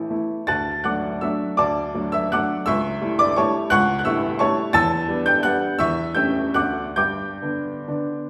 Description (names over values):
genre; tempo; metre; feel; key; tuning
classical, piano waltz; 130-185 BPM; 3/4; rubato; G major from 4.7 s; A4 = 440 Hz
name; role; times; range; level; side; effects
bright upright piano; solo; 0.0-8.3 s; A1 to A6; -22 LUFS; equal; none
room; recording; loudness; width
wet recital hall reverb, RT60 1.4 s; heard from further back in the room; -22 LUFS; mono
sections
0.0-8.3 A section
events
none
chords
0.5 D; 2.7 A7/C#; 4.7 Em7; 5.8 A7/E; 6.5 D; 7.0 G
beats
0.11 | 0.49 0.86 1.23 | 1.59 1.94 2.32 | 2.67 3.01 3.37 | 3.72 4.06 4.40 | 4.74 5.08 5.44 | 5.80 6.16 6.55 | 6.97 7.42 7.87